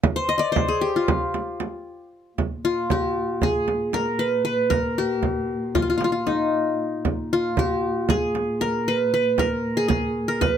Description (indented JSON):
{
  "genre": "Turkish makam ensemble",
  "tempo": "231 BPM (eighths)",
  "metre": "9/8",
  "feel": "straight",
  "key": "Bb makam hicaz",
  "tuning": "A4 = 440 Hz",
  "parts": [
    { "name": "frame drum", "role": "percussion", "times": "0.0-10.5 s", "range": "none", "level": "-24 LUFS", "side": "right 4 dB", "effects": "none" },
    { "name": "qanun", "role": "melody", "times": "0.2-10.6 s", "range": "Eb4 to Eb5", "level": "-22 LUFS", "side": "left 1 dB", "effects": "none" },
    { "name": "dark cello", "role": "drone", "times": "2.4-10.6 s", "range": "Bb2", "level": "-30 LUFS", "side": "equal", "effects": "none" }
  ],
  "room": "light reverb",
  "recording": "close, detailed microphones",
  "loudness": "-21 LUFS",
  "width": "side -9 dB against mid",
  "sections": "0.0-2.4 A section; 2.4-10.6 B section",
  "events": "none",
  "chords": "none",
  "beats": "| 0.04 0.30 0.56 0.82 1.08 1.34 1.60 1.85 2.12 | 2.37 2.63 2.89 3.15 3.41 3.67 3.93 4.19 4.45 | 4.71 4.97 5.23 5.49 5.75 6.01 6.27 6.53 6.79 | 7.05 7.31 7.57 7.83 8.09 8.35 8.61 8.87 9.13 | 9.39 9.64 9.90 10.16 10.42"
}